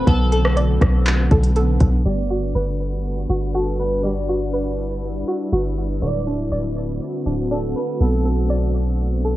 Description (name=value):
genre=hip hop, atmospheric cloud-rap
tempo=121 BPM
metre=4/4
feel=half-time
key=G major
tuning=A4 = 437 Hz
part: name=clean electric guitar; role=melody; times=0.0-9.4 s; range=A4 to D5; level=-29 LUFS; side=right 1 dB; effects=lush chorus, cassette tape, tape echo
part: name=shimmering ambient pad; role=sustained chords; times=0.0-9.4 s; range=D3 to B4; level=-26 LUFS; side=left 1 dB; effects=chorus, built-in reverb, sidechain pumping, cassette tape
part: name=string-like resonator pluck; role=arpeggios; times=0.0-9.4 s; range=D3 to D5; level=-26 LUFS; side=right 1 dB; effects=chorus, cassette tape, tape echo
part: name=long sustained 808-style bass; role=bass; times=0.0-9.4 s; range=D1 to B1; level=-20 LUFS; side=equal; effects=none
part: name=smooth R&B drum kit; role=drums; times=0.1-1.9 s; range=handclaps, hi-hat, kick drum, rim click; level=-19 LUFS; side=equal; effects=vintage 12-bit sampler grit, cassette tape
room=light reverb, digital ambience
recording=home recording on cassette, low-pass filter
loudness=-18 LUFS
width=side -15 dB against mid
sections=0.0-2.1 A section; 2.1-9.4 B section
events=filter sweep 2.1-9.4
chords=0.1 Bm7; 2.1 Gmaj7; 6.0 D7; 8.0 Bm7